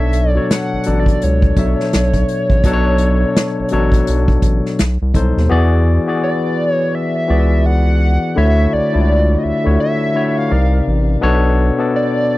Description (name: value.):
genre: R&B, neo-soul.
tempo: 84 BPM.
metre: 4/4.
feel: swing 60% on 16ths.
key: B dorian.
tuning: A4 = 441 Hz.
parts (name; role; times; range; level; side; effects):
hollow square lead; melody; 0.0-12.4 s; C#5 to F#5; -21 LUFS; right 1 dB; chorus.
barky tine electric piano; accompaniment; 0.0-12.4 s; B2 to E5; -17 LUFS; left 2 dB; none.
round analog bass; bass; 0.0-11.7 s; A1 to E2; -14 LUFS; equal; none.
unplugged drum kit; drums; 0.1-5.4 s; hi-hat, kick drum, snare drum; -16 LUFS; equal; none.
room: little or no reverb.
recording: dry, close 1970s-style studio recording.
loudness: -12 LUFS.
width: side -18 dB against mid.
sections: 0.0-5.5 A section; 5.5-12.4 B section.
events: none.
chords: 0.0 Bm9; 4.8 B7b9; 5.5 E9; 8.4 Dmaj9; 10.5 Cm9; 11.2 Bm9.